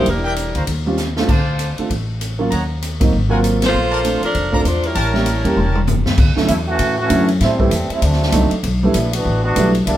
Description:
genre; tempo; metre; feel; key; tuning
jazz, big band swing; 196 BPM; 4/4; swing 61% on 8ths; D major from 6.2 s; A4 = 440 Hz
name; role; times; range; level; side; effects
clear saxophone section; melody; 0.0-0.7, 3.7-5.9 s; F3 to C5; -20 LUFS; left 1 dB; none
warm grand piano; accompaniment; 0.0-9.7 s; D3 to G4; -19 LUFS; right 2 dB; none
clear trumpet section; stabs; 0.0-5.8 s; Bb4 to Bb5; -25 LUFS; left 1 dB; none
upright bass; bass; 0.0-10.0 s; E1 to A2; -19 LUFS; equal; none
swinging big-band drum kit; drums; 0.1-10.0 s; crash cymbal, hi-hat, kick drum, ride cymbal, snare drum, toms; -21 LUFS; equal; none
mellow trombone section; second line; 6.5-10.0 s; E3 to F#4; -19 LUFS; right 1 dB; none
room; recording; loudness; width
moderate stone room reverb, RT60 0.9 s; band playing live in one room; -14 LUFS; side -12 dB against mid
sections
0.0-6.2 A section; 6.2-10.0 B section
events
drum fill 1.0-1.3, 5.6-6.2; band accent 3.6; trombone section solo 6.2-10.0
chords
0.1 Em7b5; 0.7 Eb13; 1.3 Dm7; 2.5 Ebm7; 3.1 Ab9; 3.7 Bbmaj7; 5.0 A7b9; 6.2 Dmaj9; 7.4 Am7; 8.0 D7b9; 8.6 G69

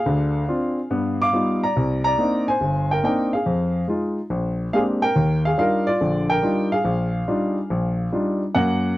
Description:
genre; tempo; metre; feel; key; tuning
solo jazz; 142 BPM; 4/4; swing 67% on 8ths; Eb major; A4 = 440 Hz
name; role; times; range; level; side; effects
warm grand piano; solo; 0.0-9.0 s; G1 to D6; -19 LUFS; equal; none
room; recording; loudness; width
little or no reverb; dry, close 1970s-style studio recording; -19 LUFS; side -16 dB against mid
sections
0.0-8.5 A section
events
none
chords
0.1 Dm7b5; 0.9 G7b13; 1.8 Cm9; 3.5 Fm7; 4.3 Bb13; 5.1 Ebmaj9

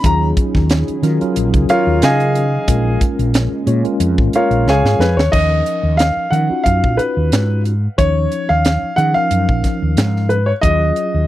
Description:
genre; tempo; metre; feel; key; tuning
electric jazz fusion; 91 BPM; 4/4; swing 54% on 16ths; Eb minor; A4 = 440 Hz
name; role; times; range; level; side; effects
dark grand piano; melody; 0.0-11.3 s; F4 to Bb5; -16 LUFS; equal; none
mellow tine electric piano; accompaniment; 0.0-11.3 s; F3 to Db5; -21 LUFS; equal; medium stereo tremolo
dark analog pad; sustained chords; 0.0-5.3 s; Eb3 to Ab4; -26 LUFS; right 1 dB; chorus
mellow fretless electric bass; bass; 0.0-11.3 s; Ab1 to Eb3; -16 LUFS; equal; none
crisp fusion drum kit; drums; 0.0-11.1 s; crash cymbal, hi-hat, kick drum, snare drum; -18 LUFS; equal; none
room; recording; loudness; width
little or no reverb; dry, close 1970s-style studio recording; -13 LUFS; side -14 dB against mid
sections
0.0-5.3 A section; 5.3-11.3 B section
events
grand piano solo 0.0-5.3; drum fill 4.7-5.3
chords
0.0 Gbmaj13; 2.7 Bbm7; 5.3 Ebm11

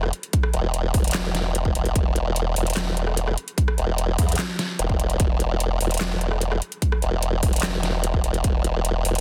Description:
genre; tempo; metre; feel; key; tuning
heavy wobble dubstep; 148 BPM; 4/4; half-time; unclear; A4 = 439 Hz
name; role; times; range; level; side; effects
formant-sweep wobble bass; bass; 0.0-9.2 s; E1 to E2; -25 LUFS; equal; chorus, overdrive
dubstep drum kit; drums; 0.0-9.2 s; handclaps, hi-hat, rim click, snare drum; -30 LUFS; equal; none
electronic kick drum; drums; 0.3-8.5 s; none; -24 LUFS; equal; overdrive
room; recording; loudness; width
little or no reverb; dense, heavily limited modern master; -23 LUFS; mono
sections
0.0-9.2 A section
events
none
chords
none

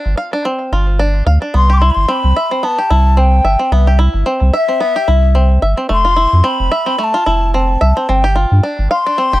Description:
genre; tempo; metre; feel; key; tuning
folktronica; 110 BPM; 4/4; swing 56% on 16ths; C major; A4 = 440 Hz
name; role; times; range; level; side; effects
bluegrass banjo; arpeggios; 0.0-9.4 s; A3 to F5; -18 LUFS; right 1 dB; tape echo
warm sub bass; bass; 0.1-9.4 s; F1 to G2; -11 LUFS; equal; none
breathy mellow wooden flute; melody; 1.6-9.4 s; E5 to D6; -16 LUFS; left 2 dB; none
room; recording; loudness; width
little or no reverb; dry, close 1970s-style studio recording; -11 LUFS; side -16 dB against mid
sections
0.0-9.4 A section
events
none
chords
0.0 G7sus4; 1.5 Cmaj7; 5.9 Fmaj7; 8.1 G7sus4

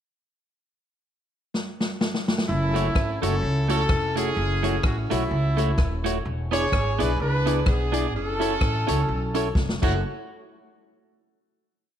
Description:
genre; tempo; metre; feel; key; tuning
ska; 127 BPM; 4/4; swing 58% on 8ths; F# minor; A4 = 441 Hz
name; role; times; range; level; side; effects
swinging big-band drum kit; drums; 1.5-9.9 s; crash cymbal, hi-hat, kick drum, rim click, snare drum; -25 LUFS; left 1 dB; none
clear horn section; melody; 2.5-10.0 s; A3 to C#5; -27 LUFS; equal; none
upright bass; bass; 2.5-10.0 s; D#1 to C#2; -26 LUFS; equal; none
clean electric guitar; accompaniment; 2.7-10.0 s; A3 to D5; -30 LUFS; right 10 dB; none
dark upright piano; stabs; 2.7-10.0 s; A3 to A4; -32 LUFS; left 11 dB; none
room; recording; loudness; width
moderate plate reverb, RT60 1.9 s, studio reverb; 1960s-style stereo with parts hard left and right; -21 LUFS; side -10 dB against mid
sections
0.6-2.5 pickup bar; 2.5-10.0 A section; 10.0-11.9 final hit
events
drum fill 1.5-2.5, 9.6-10.0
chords
0.6 N.C.; 2.5 F#m7; 6.2 E7; 8.1 F#m7; 10.0 N.C.

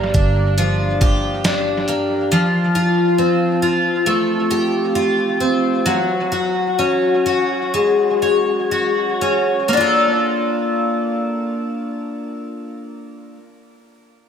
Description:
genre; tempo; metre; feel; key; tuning
dream pop; 59-69 BPM; 4/4; straight; unclear; A4 = 438 Hz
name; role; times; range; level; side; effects
picked twelve-string acoustic guitar; arpeggios; 0.0-13.5 s; G2 to Db5; -16 LUFS; left 1 dB; wide subtle chorus, analog delay, shimmer reverb
vintage muted picked electric bass; bass; 0.0-1.8 s; G1; -20 LUFS; right 1 dB; none
detuned 8-bit digital drum machine; drums; 0.1-2.1 s; hi-hat, kick drum, snare drum; -19 LUFS; right 1 dB; analog delay
room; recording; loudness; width
wet spring reverb, RT60 2.1 s; echo-heavy mix; -15 LUFS; side -7 dB against mid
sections
0.0-9.7 A section; 9.7-13.8 B section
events
slowing down 2.3-9.7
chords
0.0 Gm7; 2.3 Fadd9; 5.9 Gbsus2; 9.7 Bbmaj7

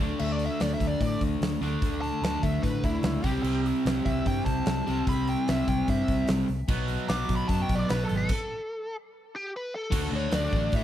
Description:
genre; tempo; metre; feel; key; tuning
classic rock; 148 BPM; 4/4; straight; unclear; A4 = 440 Hz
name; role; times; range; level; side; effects
distorted electric guitar; riff; 0.0-10.8 s; B2 to F#4; -28 LUFS; equal; distortion
fingered electric bass; bass; 0.0-10.8 s; G#1 to A2; -30 LUFS; equal; none
biting lead guitar; melody; 0.2-10.8 s; E4 to D6; -33 LUFS; left 1 dB; wah, overdrive
gated 80s drum kit; drums; 0.2-10.8 s; crash cymbal, hi-hat, kick drum, snare drum; -30 LUFS; equal; none
room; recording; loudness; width
small room ambience; none; -25 LUFS; side -11 dB against mid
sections
0.0-9.9 A section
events
lead electric guitar solo 0.0-9.9; stop 8.3-9.9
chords
0.0 D5; 3.2 C; 6.7 B5; 8.3 N.C.; 9.9 D

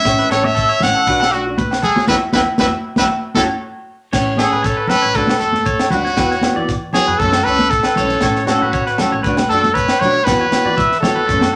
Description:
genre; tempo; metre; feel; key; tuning
highlife guitar band; 118 BPM; 4/4; straight; A major; A4 = 437 Hz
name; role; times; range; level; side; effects
brilliant trumpet; melody; 0.0-11.6 s; F#4 to F#5; -19 LUFS; equal; none
nylon-string guitar; accompaniment; 0.0-11.5 s; E3 to F#4; -25 LUFS; equal; none
electric guitar at the edge of break-up; arpeggios; 0.0-11.6 s; F#4 to E5; -23 LUFS; equal; spring reverb
upright bass; bass; 0.0-11.5 s; F#1 to E3; -30 LUFS; equal; none
tight funk drum kit; drums; 0.1-11.5 s; crash cymbal, kick drum, snare drum; -25 LUFS; equal; none
agogo bells; percussion; 0.1-11.5 s; none; -26 LUFS; equal; none
shekere; percussion; 0.1-11.4 s; none; -32 LUFS; equal; none
congas; percussion; 0.4-11.5 s; none; -25 LUFS; equal; none
room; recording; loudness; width
wet studio reverb, RT60 0.7 s; none; -16 LUFS; mono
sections
0.0-4.1 A section; 4.1-11.6 B section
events
band accent 2.1-4.1; trumpet solo 4.1-11.6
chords
0.0 A; 1.1 Bm7; 2.1 Esus2; 3.1 F#7(no3); 4.1 A; 5.2 Bm7; 6.2 Esus2; 7.2 F#m7; 8.2 A; 9.2 Bm7; 10.3 Esus2

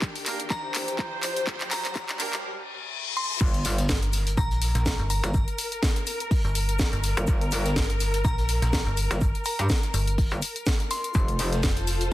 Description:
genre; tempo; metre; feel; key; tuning
bass house; 124 BPM; 4/4; swing 56% on 16ths; G minor; A4 = 439 Hz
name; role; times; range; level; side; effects
electronic kick drum; drums; 0.0-11.7 s; none; -25 LUFS; equal; none
house drum kit; drums; 0.0-12.1 s; crash cymbal, handclaps, hi-hat, snare drum, tambourine; -30 LUFS; left 1 dB; none
riser, reverse cymbal and impact; sound effects; 0.0-5.3 s; none; -35 LUFS; left 2 dB; none
clear studio string section; texture; 0.0-12.1 s; D4 to A5; -34 LUFS; left 1 dB; sidechain pumping
clear horn section; stabs; 0.3-2.4 s; Bb3 to Bb4; -34 LUFS; right 4 dB; sidechain pumping, digital delay
glassy synth bell; melody; 0.5-5.3, 8.2-11.2 s; Bb5 to C6; -34 LUFS; left 1 dB; chorus, digital delay
metallic wobble bass; bass; 3.4-11.6 s; F1 to G2; -26 LUFS; equal; distortion, chorus, overdrive, sidechain pumping
vintage drum kit; drums; 3.4-12.1 s; hi-hat, shaker, snare drum; -41 LUFS; equal; none
metallic FM bass; bass; 3.9-12.1 s; F1 to Bb1; -26 LUFS; equal; tube saturation, sidechain pumping
room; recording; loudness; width
light reverb, small room ambience; dense, heavily limited modern master, high-pass filter; -23 LUFS; side -15 dB against mid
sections
0.0-3.4 A section; 3.4-12.1 B section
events
build-up 0.0-3.4; drum fill 0.0-2.4; riser 0.0-2.4; reverse cymbal 2.4-3.4; drop 3.4-12.1; impact 3.4-5.3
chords
0.0 Gm; 11.1 F

